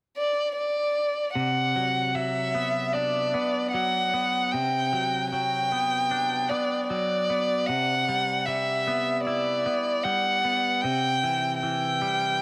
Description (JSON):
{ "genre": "rock", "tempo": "76 BPM", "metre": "4/4", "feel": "straight", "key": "unclear", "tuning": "A4 = 441 Hz", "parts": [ { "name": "warm violin", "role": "melody", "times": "0.2-12.4 s", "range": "D5 to G5", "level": "-27 LUFS", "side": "equal", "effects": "tape echo" }, { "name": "twangy electric guitar", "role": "arpeggios", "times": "1.4-12.4 s", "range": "C3 to E4", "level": "-32 LUFS", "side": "equal", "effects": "subtle chorus, tape echo" } ], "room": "light reverb, small room ambience", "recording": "none", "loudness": "-26 LUFS", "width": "mono", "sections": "0.0-1.4 A section; 1.4-12.4 B section", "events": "none", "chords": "0.0 N.C.; 1.4 Bm/C; 7.7 Cmaj7; 10.8 C", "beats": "0.56 | 1.36 2.15 2.94 3.73 | 4.52 5.31 6.11 6.89 | 7.68 8.47 9.27 10.05 | 10.84 11.63" }